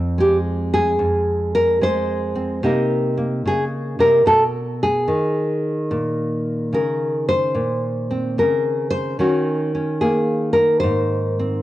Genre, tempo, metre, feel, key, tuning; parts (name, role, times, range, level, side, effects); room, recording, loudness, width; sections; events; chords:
solo jazz; 73 BPM; 4/4; swing 66% on 8ths; F minor; A4 = 439 Hz
nylon-string guitar; solo; 0.0-11.6 s; F2 to C5; -17 LUFS; equal; cassette tape
light reverb, small room ambience; home recording on cassette; -17 LUFS; side -15 dB against mid
0.0-11.6 A section
0.0 Fm; 2.6 Cm7; 4.3 B6; 5.9 Bbmadd9; 9.2 Ebm7; 10.8 Ab